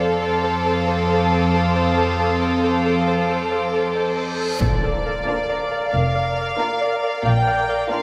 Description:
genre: cinematic, suspense film score.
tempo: 91 BPM.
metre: 4/4.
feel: straight.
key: unclear.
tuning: A4 = 437 Hz.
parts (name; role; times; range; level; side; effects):
warm studio violin section; melody; 0.0-8.0 s; C5 to G5; -28 LUFS; equal; none.
warm studio violin section; second line; 0.0-8.0 s; F4 to Bb4; -27 LUFS; equal; none.
warm studio viola section; accompaniment; 0.0-8.0 s; Bb3 to D4; -29 LUFS; equal; none.
pulsing gated texture; sustained chords; 0.0-8.0 s; A4 to A5; -26 LUFS; equal; chorus, built-in reverb.
warm studio cello section; bass; 0.0-7.8 s; F2 to Bb2; -26 LUFS; equal; none.
celesta; texture; 0.0-8.0 s; D5 to C6; -37 LUFS; equal; none.
warm studio violin section; texture; 0.0-8.0 s; Bb5 to Eb6; -34 LUFS; equal; none.
reverse cymbal and impact; sound effects; 4.1-7.2 s; none; -30 LUFS; equal; none.
warm studio double bass section; bass; 4.6-7.8 s; F1 to Bb1; -26 LUFS; equal; none.
taiko ensemble; drums; 4.6-5.9 s; none; -31 LUFS; equal; none.
room: wet scoring stage reverb, RT60 1.7 s.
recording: none.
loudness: -20 LUFS.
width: mono.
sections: 0.0-4.6 A section; 4.6-8.0 B section.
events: reverse cymbal 4.1-4.6; impact 4.6-7.2.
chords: 0.0 F; 4.6 Bb.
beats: 0.00 0.66 1.32 | 1.98 2.63 3.29 3.95 | 4.61 5.27 5.93 6.59 | 7.25 7.91.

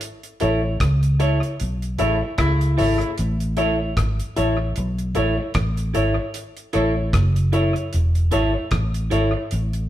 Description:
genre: roots reggae.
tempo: 76 BPM.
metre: 4/4.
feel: swing 57% on 16ths.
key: A major.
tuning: A4 = 441 Hz.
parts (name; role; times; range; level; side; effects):
damped 70s drum kit; drums; 0.0-9.9 s; hi-hat, kick drum, rim click; -26 LUFS; equal; analog delay.
semi-hollow electric guitar; accompaniment; 0.4-9.4 s; E4 to C#5; -25 LUFS; right 3 dB; none.
barky reed electric piano; stabs; 0.4-9.3 s; E4 to E5; -26 LUFS; left 4 dB; overdrive, fast tremolo.
vintage muted fingered electric bass; bass; 0.4-9.9 s; E1 to C#2; -21 LUFS; equal; none.
warm horn section; second line; 2.0-3.1 s; C#3 to E4; -26 LUFS; left 2 dB; none.
room: wet stone room reverb, RT60 1.3 s.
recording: band playing live in one room.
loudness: -18 LUFS.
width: side -13 dB against mid.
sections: 0.0-9.9 A section.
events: band accent 0.0-3.2.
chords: 0.0 A.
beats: | 0.01 0.80 1.59 2.38 | 3.18 3.97 4.76 5.55 | 6.34 7.13 7.92 8.71 | 9.51.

